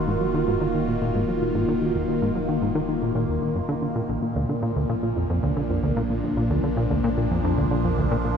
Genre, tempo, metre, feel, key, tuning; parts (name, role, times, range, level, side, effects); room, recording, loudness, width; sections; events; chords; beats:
ambient, sequencer-driven space music; 112 BPM; 4/4; straight; Eb harmonic minor; A4 = 440 Hz
phased analog pad; sustained chords; 0.0-8.4 s; Bb2 to Gb4; -25 LUFS; equal; phaser, chorus
plucky analog bass; riff; 0.0-8.3 s; Bb1 to Gb3; -25 LUFS; equal; cassette tape, ping-pong delay
round analog bass; bass; 0.0-8.4 s; Eb1 to Bb1; -33 LUFS; equal
wet cathedral reverb, RT60 6.5 s; in a vast, echoing space; -21 LUFS; side -7 dB against mid
0.0-8.4 A section
filter sweep on analog synth bass 0.0-8.4
0.0 Ebm; 4.1 Bb
0.34 0.88 1.42 | 1.95 2.49 3.02 3.56 | 4.09 4.63 5.17 5.70 | 6.24 6.77 7.31 7.84